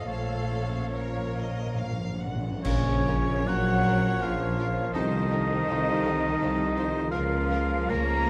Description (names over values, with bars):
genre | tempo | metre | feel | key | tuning
classical, slow romantic movement for symphony orchestra | 67-86 BPM | 3/4 | rubato | Bb minor | A4 = 440 Hz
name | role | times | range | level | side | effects
rich chamber violin section | melody | 0.0-8.0 s | A4 to Gb5 | -46 LUFS | equal | none
flute section | second line | 0.0-8.3 s | Db5 to Bb5 | -40 LUFS | equal | none
warm chamber violin section | second line | 0.0-8.3 s | Bb3 to Db5 | -46 LUFS | equal | none
warm oboe | second line | 0.0-8.3 s | Db5 to Bb5 | -34 LUFS | equal | none
bright studio viola section | accompaniment | 0.0-8.3 s | A4 to Db5 | -43 LUFS | equal | none
mellow bassoon | accompaniment | 0.0-2.2 s | F3 | -43 LUFS | equal | none
mellow French horn section | sustained chords | 0.0-8.3 s | A3 to Bb4 | -40 LUFS | equal | none
concert harp | arpeggios | 0.0-8.3 s | Bb2 to F6 | -41 LUFS | equal | none
clear chamber double bass section | bass | 0.0-8.3 s | Bb1 to Db2 | -34 LUFS | equal | none
rich studio cello section | bass | 0.0-8.3 s | Bb2 to Bb3 | -35 LUFS | equal | none
warm clarinet | second line | 0.1-8.3 s | Db4 to Db5 | -37 LUFS | equal | none
cymbal swell, clash cymbals and concert bass drum | percussion | 0.1-4.2 s | none | -37 LUFS | equal | none
timpani | percussion | 0.1-2.6 s | Bb2 | -38 LUFS | equal | none
warm trombone section | sustained chords | 2.6-8.3 s | Bb2 to F3 | -39 LUFS | equal | none
mellow tuba | bass | 2.6-8.3 s | Bb1 to Db2 | -36 LUFS | equal | none
room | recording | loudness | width
moderate scoring stage reverb, RT60 1.5 s | vinyl crackle | -27 LUFS | mono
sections
0.0-2.6 A section; 2.6-8.3 A section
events
timpani fill 0.1-2.6; band accent 2.6-3.5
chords
0.1 Bbm; 5.0 F7/C; 7.1 Bbm/Db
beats
| 0.09 0.95 1.80 | 2.65 3.48 4.23 | 4.95 5.68 6.41 | 7.13 7.92